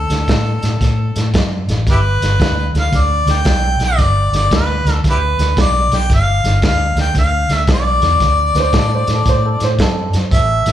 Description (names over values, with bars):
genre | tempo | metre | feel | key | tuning
electric blues shuffle | 114 BPM | 4/4 | swing 66% on 8ths | unclear | A4 = 440 Hz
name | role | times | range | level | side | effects
warm harmonica | melody | 0.0-10.7 s | E4 to G5 | -17 LUFS | left 1 dB | slapback echo
vintage muted fingered electric bass | bass | 0.0-10.7 s | G1 to A2 | -16 LUFS | equal | none
crunchy breakbeat drum kit | drums | 0.1-10.7 s | hi-hat, kick drum, snare drum | -18 LUFS | equal | none
warm upright piano | second line | 8.6-10.1 s | C4 to C5 | -21 LUFS | right 6 dB | slapback echo, analog delay
room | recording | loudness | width
small room reverb | live gig heard through the venue's PA, club reverb | -12 LUFS | side -11 dB against mid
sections
0.0-10.7 A section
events
none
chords
0.0 D (rootless); 1.9 G7; 8.2 D7